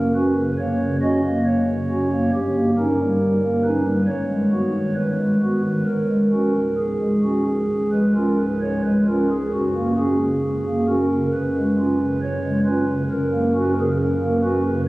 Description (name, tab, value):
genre	classical, chorale-style piece for pipe organ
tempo	67 BPM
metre	4/4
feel	straight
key	F# major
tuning	A4 = 439 Hz
part	pipe organ, stopped flute	solo	0.0-14.9 s	C#1 to D#5	-18 LUFS	equal	none
room	wet cathedral reverb, RT60 5.3 s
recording	recorded on a phone in the room, studio reverb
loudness	-18 LUFS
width	side -19 dB against mid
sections	0.0-14.9 A section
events	none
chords	0.0 F#; 2.3 D#7/G; 4.1 G#m7; 5.9 C#sus4; 7.7 C#; 9.5 F#; 11.3 C#7/F#; 13.1 F#